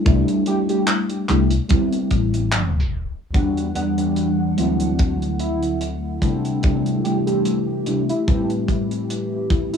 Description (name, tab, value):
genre	vaporwave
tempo	73 BPM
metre	4/4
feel	swing 55% on 16ths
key	A dorian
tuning	A4 = 440 Hz
part	mellow FM electric piano	accompaniment	0.0-9.8 s	D2 to F#5	-21 LUFS	left 1 dB	ensemble chorus, tape echo
part	hollow-body short-scale fingered electric bass	bass	0.1-3.2 s	A1 to C2	-20 LUFS	left 1 dB	none
part	crisp fusion drum kit	drums	0.1-9.8 s	handclaps, hi-hat	-28 LUFS	right 1 dB	cassette tape
part	kick drum	drums	0.1-9.7 s	none	-20 LUFS	equal	cassette tape
part	warm velvety synth lead	melody	0.5-9.8 s	E4 to G4	-27 LUFS	right 2 dB	chorus, tape echo
part	warbly tape-like pad	sustained chords	3.7-9.8 s	D3 to F#5	-25 LUFS	left 1 dB	chorus, built-in reverb
part	clean electric guitar	riff	3.3-9.8 s	C4 to A4	-36 LUFS	right 1 dB	analog chorus, low-pass filter, tape echo
room	moderate studio reverb, RT60 0.6 s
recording	home recording on cassette, tape stop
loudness	-18 LUFS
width	side -7 dB against mid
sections	0.0-3.3 A section; 3.3-9.8 B section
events	tape stop 2.5-3.3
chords	0.0 C6; 1.7 Am7; 3.3 Em9; 4.6 D7; 6.2 C6; 8.3 Am7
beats	| 0.06 0.88 1.70 2.53 | 3.35 4.17 4.99 5.81 | 6.63 7.46 8.28 9.10